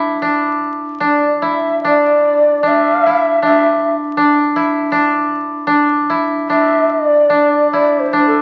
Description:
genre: japanese traditional, Japanese chamber music.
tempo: 73-81 BPM.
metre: 2/4.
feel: rubato.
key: unclear.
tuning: A4 = 441 Hz.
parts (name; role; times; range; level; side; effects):
koto; second line; 0.0-8.4 s; D4 to E4; -17 LUFS; equal; none.
breathy long shakuhachi; melody; 1.1-4.0, 6.5-8.4 s; A4 to E5; -16 LUFS; equal; none.
room: wet recital hall reverb, RT60 1.6 s.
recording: very old 78 rpm record, vinyl crackle, nothing above 7.7 kHz.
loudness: -14 LUFS.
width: mono.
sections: 0.0-7.3 A section; 7.3-8.4 B section.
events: none.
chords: none.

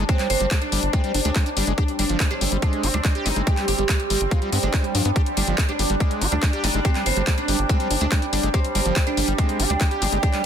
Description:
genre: psychedelic trance.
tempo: 142 BPM.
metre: 4/4.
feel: straight.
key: unclear.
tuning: A4 = 442 Hz.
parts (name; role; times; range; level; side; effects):
bubbling stepped-filter texture; sustained chords; 0.0-10.5 s; G3 to G4; -29 LUFS; right 2 dB; chorus, built-in reverb, sidechain pumping.
screaming distorted acid line; riff; 0.0-10.4 s; F3 to G4; -29 LUFS; moving between left 3 dB and right 3 dB; distortion, chorus, auto-pan, sidechain pumping, tape echo.
tight sequencer bass; bass; 0.0-10.2 s; G1 to G2; -24 LUFS; equal; none.
deep dark ambient pad; texture; 2.4-10.5 s; G5; -34 LUFS; right 4 dB; chorus, built-in reverb, sidechain pumping.
oud; melody; 0.1-10.3 s; C4 to G4; -27 LUFS; right 1 dB; phaser, sidechain pumping, tape echo.
drum and bass drum kit; drums; 0.1-10.4 s; handclaps, hi-hat; -26 LUFS; left 2 dB; overdrive.
electronic kick drum; drums; 0.1-10.3 s; none; -21 LUFS; equal; overdrive.
room: light reverb.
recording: dense, heavily limited modern master.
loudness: -19 LUFS.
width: side -8 dB against mid.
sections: 0.0-10.5 A section.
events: none.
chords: 0.0 G5.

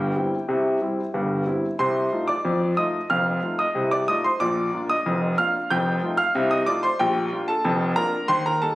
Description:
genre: ragtime piano.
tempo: 92 BPM.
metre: 2/4.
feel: straight.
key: Bb major.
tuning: A4 = 441 Hz.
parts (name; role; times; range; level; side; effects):
clear grand piano; solo; 0.0-8.8 s; F1 to G6; -20 LUFS; equal; none.
room: light reverb.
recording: recorded on a phone in the room, studio reverb, compression.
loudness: -20 LUFS.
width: side -17 dB against mid.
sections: 0.0-8.8 A section.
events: none.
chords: 0.0 C; 1.8 F7/C; 3.1 F7; 4.4 Bb; 5.7 F7; 7.0 Bb.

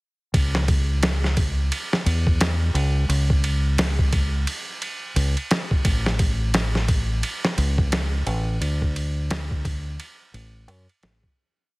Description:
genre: trip hop.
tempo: 87 BPM.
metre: 4/4.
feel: swing 60% on 16ths.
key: C# phrygian.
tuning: A4 = 439 Hz.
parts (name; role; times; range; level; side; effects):
deep dub fingered electric bass; bass; 0.3-11.2 s; A1 to F#2; -22 LUFS; equal; tube saturation.
boom bap sampler-style drum kit; drums; 0.3-11.4 s; kick drum, ride cymbal, snare drum; -23 LUFS; equal; studio reverb.
room: little or no reverb.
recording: heavily compressed radio sound, multiband compression.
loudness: -20 LUFS.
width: side -24 dB against mid.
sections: 0.3-11.4 groove.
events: fade-out 7.7-11.4.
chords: none.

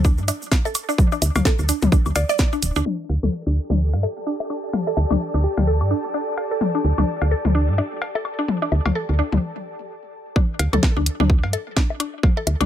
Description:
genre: minimal techno.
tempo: 128 BPM.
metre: 4/4.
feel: swing 59% on 16ths.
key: unclear.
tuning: A4 = 440 Hz.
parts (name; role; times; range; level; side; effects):
mallet-like synth pluck; riff; 0.0-12.6 s; D4 to D5; -26 LUFS; right 1 dB; chorus, phaser, sidechain pumping, dub echo.
woody FM bass; bass; 0.0-12.7 s; D1 to G2; -20 LUFS; equal; sidechain pumping.
electronic kick drum; drums; 0.0-2.5, 10.4-12.3 s; none; -18 LUFS; equal; none.
tube shaker; percussion; 0.0-2.8 s; none; -31 LUFS; right 5 dB; none.
garage drum kit; drums; 0.3-2.7, 10.6-12.7 s; hi-hat, snare drum; -23 LUFS; equal; low-pass filter on hats, low-pass filter on snare.
electronic woodblock, cowbell and toms; percussion; 0.3-12.7 s; none; -25 LUFS; left 5 dB; digital delay.
ethereal airy pad; texture; 3.5-9.4 s; G4 to A5; -29 LUFS; equal; ensemble chorus, built-in reverb, sidechain pumping.
soft struck synth lead; melody; 5.4-5.6 s; G4; -31 LUFS; left 2 dB; none.
room: light reverb.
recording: low-pass filter.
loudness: -18 LUFS.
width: side -11 dB against mid.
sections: 0.0-2.9 A section; 2.9-10.4 B section; 10.4-12.7 A section.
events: drop 0.0-2.9, 10.4-12.7; filter sweep on synth arpeggio sound 2.9-10.4; filter sweep 2.9-10.4; break 9.4-10.4.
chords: 0.0 N.C.; 2.9 Dsus4; 10.4 N.C..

